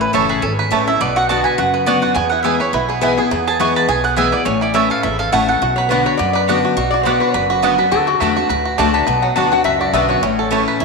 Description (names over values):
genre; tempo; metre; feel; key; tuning
bluegrass; 208 BPM; 4/4; swing 55% on 8ths; B dorian; A4 = 440 Hz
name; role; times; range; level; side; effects
mandolin; melody; 0.0-5.9 s; G#4 to C#6; -19 LUFS; right 2 dB; none
picked steel-string acoustic guitar; accompaniment; 0.0-10.8 s; E2 to F#4; -20 LUFS; left 9 dB; none
bluegrass banjo; arpeggios; 0.0-10.8 s; F#3 to B4; -19 LUFS; right 6 dB; none
upright bass; bass; 0.0-10.8 s; F#1 to F#2; -25 LUFS; equal; none
mandolin; stabs; 0.1-10.6 s; A3 to A5; -22 LUFS; right 7 dB; none
lap resonator guitar; second line; 2.9-3.4, 5.8-10.8 s; F#4 to A5; -20 LUFS; left 6 dB; none
room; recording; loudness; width
wet echo chamber reverb, RT60 1.8 s, studio ambience; 1960s-style stereo with parts hard left and right, faint mains hum; -13 LUFS; side -3 dB against mid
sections
0.0-6.8 A section; 6.8-10.8 B section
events
resonator guitar played with a steel bar solo 6.8-10.8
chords
0.0 A; 1.0 Bm; 2.2 E; 4.5 A; 5.6 Bm; 7.9 D; 9.1 Bm; 10.2 A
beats
0.14 0.43 0.71 | 1.00 1.29 1.58 1.87 | 2.16 2.45 2.73 3.02 | 3.31 3.60 3.89 4.18 | 4.47 4.75 5.04 5.33 | 5.62 5.91 6.20 6.48 | 6.77 7.06 7.35 7.64 | 7.92 8.21 8.50 8.79 | 9.08 9.36 9.65 9.94 | 10.23 10.51 10.80